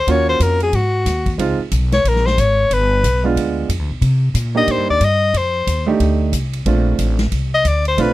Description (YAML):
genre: jazz, small-group swing and bop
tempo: 182 BPM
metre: 4/4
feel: swing 61% on 8ths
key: unclear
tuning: A4 = 440 Hz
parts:
  - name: breathy soprano saxophone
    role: melody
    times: 0.0-8.1 s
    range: Gb4 to Eb5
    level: -17 LUFS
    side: left 3 dB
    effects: none
  - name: upright bass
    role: bass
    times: 0.0-8.1 s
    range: G1 to C3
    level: -18 LUFS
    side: equal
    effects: none
  - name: clear baby grand piano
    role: accompaniment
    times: 0.1-8.1 s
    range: Ab3 to G4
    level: -19 LUFS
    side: right 5 dB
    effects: none
  - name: swinging big-band drum kit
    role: drums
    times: 0.1-8.1 s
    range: hi-hat, kick drum, ride cymbal, snare drum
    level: -26 LUFS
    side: equal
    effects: none
room: little or no reverb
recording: dry, close 1970s-style studio recording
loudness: -14 LUFS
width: side -16 dB against mid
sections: 0.0-8.1 A section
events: none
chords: 0.1 Ebm9; 0.7 Ab5; 1.4 Dbmaj9; 2.7 G7b9; 4.0 Cm9; 5.3 F13; 6.7 Bbmaj9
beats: | 0.07 0.40 0.73 1.06 | 1.39 1.72 2.05 2.38 | 2.71 3.04 3.36 3.69 | 4.02 4.35 4.68 5.01 | 5.34 5.67 6.00 6.33 | 6.66 6.99 7.32 7.65 | 7.98